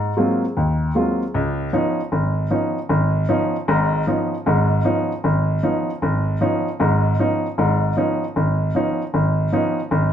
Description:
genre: jazz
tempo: 154 BPM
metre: 4/4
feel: swing 65% on 8ths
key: Db mixolydian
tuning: A4 = 440 Hz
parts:
  - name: warm baby grand piano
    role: solo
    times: 0.0-10.1 s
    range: Ab1 to F4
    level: -18 LUFS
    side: equal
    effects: none
room: wet large studio reverb, RT60 0.9 s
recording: band playing live in one room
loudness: -18 LUFS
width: side -9 dB against mid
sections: 0.0-1.3 A section; 1.3-10.1 B section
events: none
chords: 0.0 Ab13; 1.3 Db9

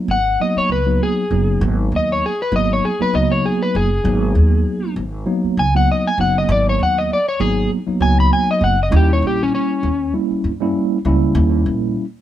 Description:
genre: straight-eighth soul blues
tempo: 98 BPM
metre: 4/4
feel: swing 55% on 16ths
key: G# minor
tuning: A4 = 439 Hz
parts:
  - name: mellow tine electric piano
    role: accompaniment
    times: 0.0-12.0 s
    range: F#3 to E4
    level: -19 LUFS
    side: right 1 dB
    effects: medium stereo tremolo
  - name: electric slide guitar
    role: melody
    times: 0.1-10.1 s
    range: C#4 to B5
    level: -19 LUFS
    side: left 2 dB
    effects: none
  - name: upright bass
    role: bass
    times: 0.1-11.9 s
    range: F#1 to G2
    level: -18 LUFS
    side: equal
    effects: none
room: light reverb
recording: band playing live in one room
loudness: -15 LUFS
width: side -12 dB against mid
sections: 0.0-12.2 A section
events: electric slide guitar solo 0.0-12.2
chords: 0.0 G#m9; 8.9 D#7b9

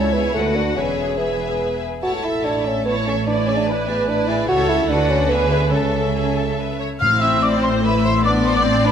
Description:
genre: quick classical-period movement for symphony orchestra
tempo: 146 BPM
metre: 3/4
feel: rubato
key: A major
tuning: A4 = 442 Hz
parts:
  - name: rich chamber violin section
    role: melody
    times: 0.0-8.9 s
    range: B4 to A5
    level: -27 LUFS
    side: left 4 dB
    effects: none
  - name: rich chamber violin section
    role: second line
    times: 0.0-8.9 s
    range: E4 to E5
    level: -26 LUFS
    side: left 3 dB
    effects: none
  - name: dark bassoon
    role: accompaniment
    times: 0.0-6.8 s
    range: A3 to F#4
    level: -21 LUFS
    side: equal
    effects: none
  - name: rich chamber viola section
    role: accompaniment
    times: 0.0-8.9 s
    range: A3 to D5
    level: -24 LUFS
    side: equal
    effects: none
  - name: dark chamber cello section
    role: bass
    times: 0.0-8.9 s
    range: C#2 to D3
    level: -24 LUFS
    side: right 2 dB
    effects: none
  - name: rich chamber double bass section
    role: bass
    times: 0.0-8.9 s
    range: E1 to D2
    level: -26 LUFS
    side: right 2 dB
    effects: none
  - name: concert flute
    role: second line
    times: 7.0-8.9 s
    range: B5 to F6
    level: -19 LUFS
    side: left 2 dB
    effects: none
  - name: timpani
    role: percussion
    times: 7.0-7.6 s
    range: A2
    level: -27 LUFS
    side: equal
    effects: none
room: moderate scoring stage reverb, RT60 1.7 s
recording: none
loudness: -16 LUFS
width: side -8 dB against mid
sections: 0.0-7.0 A section; 7.0-8.9 A section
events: none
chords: 0.4 Bm7/D; 0.8 E; 2.0 A; 3.3 E7/A; 4.5 A/C#; 4.9 Bm7/D; 5.3 E7/D; 5.7 A/C#; 7.0 Am; 8.3 N.C.

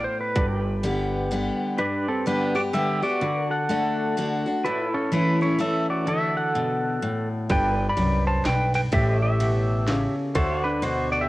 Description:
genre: honky-tonk and classic country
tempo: 126 BPM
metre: 3/4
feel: swing 61% on 8ths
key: G major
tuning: A4 = 443 Hz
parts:
  - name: pedal steel guitar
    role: melody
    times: 0.0-11.3 s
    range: C4 to B5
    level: -25 LUFS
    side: equal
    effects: cassette tape
  - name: picked steel-string acoustic guitar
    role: accompaniment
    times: 0.0-11.3 s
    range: F#2 to G4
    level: -26 LUFS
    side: left 1 dB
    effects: none
  - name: warm upright piano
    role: accompaniment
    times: 0.0-1.8, 7.5-11.3 s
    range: D4 to D5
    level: -39 LUFS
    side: right 3 dB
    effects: none
  - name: pedal steel guitar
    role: sustained chords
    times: 0.0-11.3 s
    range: A3 to F#5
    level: -34 LUFS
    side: right 1 dB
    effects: wide subtle chorus
  - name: upright bass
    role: bass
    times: 0.0-1.5, 7.5-11.3 s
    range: G1 to D2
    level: -26 LUFS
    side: equal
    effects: none
  - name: drum and bass drum kit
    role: drums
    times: 0.4-1.4, 7.5-11.0 s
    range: hi-hat, kick drum, ride cymbal, snare drum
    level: -28 LUFS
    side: equal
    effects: cassette tape
room: light reverb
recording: home recording on cassette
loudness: -21 LUFS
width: side -18 dB against mid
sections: 0.0-1.8 A section; 1.8-11.3 B section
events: pedal steel guitar solo 0.0-1.8; kick and snare drop out 0.8-1.8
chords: 0.4 G; 3.2 D; 4.6 A; 6.1 D; 7.5 G; 8.9 A7; 10.4 D7

